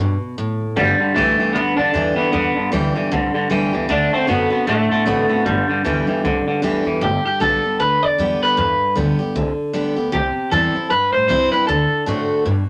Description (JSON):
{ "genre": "rock", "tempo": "154 BPM", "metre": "4/4", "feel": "swing 59% on 8ths", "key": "G major", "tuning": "A4 = 439 Hz", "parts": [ { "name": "picked steel-string acoustic guitar", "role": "accompaniment", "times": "0.0-12.7 s", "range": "G2 to G4", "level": "-24 LUFS", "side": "equal", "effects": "none" }, { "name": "upright bass", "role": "bass", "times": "0.0-12.7 s", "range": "F#1 to B2", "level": "-26 LUFS", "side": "equal", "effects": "none" }, { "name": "electric guitar through a small old amp", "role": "melody", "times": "0.8-12.0 s", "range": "G3 to D5", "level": "-20 LUFS", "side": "equal", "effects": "none" }, { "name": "twangy electric guitar", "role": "riff", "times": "0.8-7.0 s", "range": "G2 to B3", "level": "-23 LUFS", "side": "equal", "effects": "warbly pitch drift" } ], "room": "moderate studio reverb, RT60 0.7 s", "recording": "none", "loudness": "-18 LUFS", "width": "mono", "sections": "0.0-7.0 A section; 7.0-12.7 A section", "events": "none", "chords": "0.0 D (rootless); 0.8 G; 3.9 D7; 5.5 G; 10.1 C; 11.7 D7" }